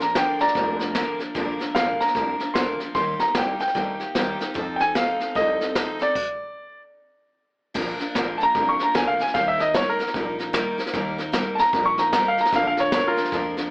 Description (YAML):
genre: rockabilly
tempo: 150 BPM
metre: 4/4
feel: swing 62% on 8ths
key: Bb major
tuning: A4 = 440 Hz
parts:
  - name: bright upright piano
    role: melody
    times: 0.0-13.5 s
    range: F4 to Db6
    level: -21 LUFS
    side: equal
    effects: none
  - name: picked steel-string acoustic guitar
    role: accompaniment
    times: 0.0-13.7 s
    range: Bb2 to Bb4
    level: -28 LUFS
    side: equal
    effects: none
  - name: upright bass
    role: bass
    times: 0.0-13.7 s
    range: F1 to F2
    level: -30 LUFS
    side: equal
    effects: none
  - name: jazz brush drum kit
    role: drums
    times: 0.0-13.6 s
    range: crash cymbal, hi-hat, kick drum, snare drum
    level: -27 LUFS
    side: equal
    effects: none
room: moderate studio ambience, RT60 0.5 s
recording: AM radio sound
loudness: -20 LUFS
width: side -31 dB against mid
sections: 0.0-7.8 A section; 7.8-13.7 B section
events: stop 6.2-7.8; upright piano solo 7.8-13.7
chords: 0.0 Bb; 3.0 Eb; 4.6 F7; 6.2 N.C.; 7.8 Bb; 9.3 Eb; 12.5 Bb